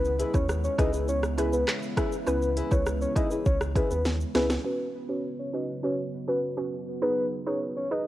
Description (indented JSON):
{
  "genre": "dancehall",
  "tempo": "101 BPM",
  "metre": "4/4",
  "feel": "straight",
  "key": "unclear",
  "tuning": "A4 = 440 Hz",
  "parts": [
    { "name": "soft octave-layered synth lead", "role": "melody", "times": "0.0-8.0 s", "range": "B4 to D#5", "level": "-30 LUFS", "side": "left 1 dB", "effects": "chorus, low-pass filter, cassette tape, tape echo" },
    { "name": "mallet-like synth pluck", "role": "accompaniment", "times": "0.0-8.1 s", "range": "C#4 to B4", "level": "-33 LUFS", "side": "right 2 dB", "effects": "chorus, sidechain pumping, low-pass filter, cassette tape" },
    { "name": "deep dark ambient pad", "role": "sustained chords", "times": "0.0-8.1 s", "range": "C#3 to G#4", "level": "-37 LUFS", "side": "right 1 dB", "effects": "chorus, built-in reverb, sidechain pumping, low-pass filter, cassette tape" },
    { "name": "sub bass with octave", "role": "bass", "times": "0.0-4.6 s", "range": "C#2 to D#2", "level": "-30 LUFS", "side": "equal", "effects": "none" },
    { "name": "afro-pop drum kit", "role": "drums", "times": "0.0-4.6 s", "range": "handclaps, hi-hat, kick drum, rim click, shaker, snare drum", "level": "-28 LUFS", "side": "equal", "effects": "cassette tape" },
    { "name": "flamenco guitar", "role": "arpeggios", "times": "0.2-4.5 s", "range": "E4 to B4", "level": "-32 LUFS", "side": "left 3 dB", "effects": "cassette tape" }
  ],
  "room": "light reverb",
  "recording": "home recording on cassette",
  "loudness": "-25 LUFS",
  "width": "side -14 dB against mid",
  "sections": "0.0-4.6 A section; 4.6-8.1 B section",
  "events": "drum fill 4.1-4.6",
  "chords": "0.0 C#m7; 4.6 F#sus4; 7.0 G#m"
}